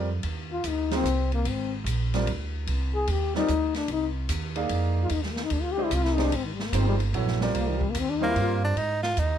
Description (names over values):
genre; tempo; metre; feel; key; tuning
modal jazz; 148 BPM; 3/4; swing 66% on 8ths; Ab lydian; A4 = 442 Hz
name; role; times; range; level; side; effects
warm grand piano; accompaniment; 0.0-8.7 s; F3 to F5; -30 LUFS; right 4 dB; none
upright bass; bass; 0.0-9.4 s; G1 to Ab2; -27 LUFS; right 1 dB; none
open jazz drum kit; drums; 0.2-9.3 s; hi-hat, kick drum, ride cymbal, snare drum; -35 LUFS; left 1 dB; none
dark trombone; second line; 0.5-8.6 s; Eb3 to Ab4; -28 LUFS; left 6 dB; none
bright tenor saxophone; melody; 8.2-9.4 s; Bb3 to F4; -26 LUFS; right 2 dB; none
room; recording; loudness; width
little or no reverb; close, detailed microphones; -24 LUFS; side -9 dB against mid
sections
0.0-8.8 A section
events
trombone solo 0.0-8.8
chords
0.0 Abmaj9; 8.8 Ab5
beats
| 0.24 0.64 1.05 | 1.46 1.86 2.27 | 2.67 3.08 3.49 | 3.89 4.30 4.71 | 5.11 5.52 5.92 | 6.33 6.74 7.14 | 7.55 7.95 8.36 | 8.77 9.17